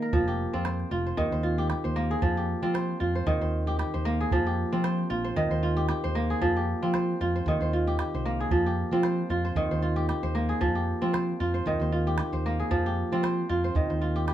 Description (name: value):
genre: west african traditional, West African string and xylophone music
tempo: 114 BPM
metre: 4/4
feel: swing 56% on 16ths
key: F minor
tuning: A4 = 441 Hz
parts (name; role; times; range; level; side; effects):
- kora; arpeggios; 0.0-14.3 s; Eb3 to C5; -27 LUFS; equal; none
- fingered electric bass; bass; 0.1-14.3 s; F1 to F3; -29 LUFS; equal; none
- calabash; percussion; 0.1-14.3 s; none; -30 LUFS; right 2 dB; none
room: light reverb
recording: none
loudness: -25 LUFS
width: side -12 dB against mid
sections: 0.1-14.3 A section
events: none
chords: 0.1 F5; 1.2 Eb; 2.2 Fm; 3.3 Eb; 4.3 Fm; 5.4 Eb; 6.4 Fm; 7.5 Eb; 8.5 Fm; 9.6 Eb; 10.6 Fm; 11.7 Eb; 12.7 Fm; 13.7 Eb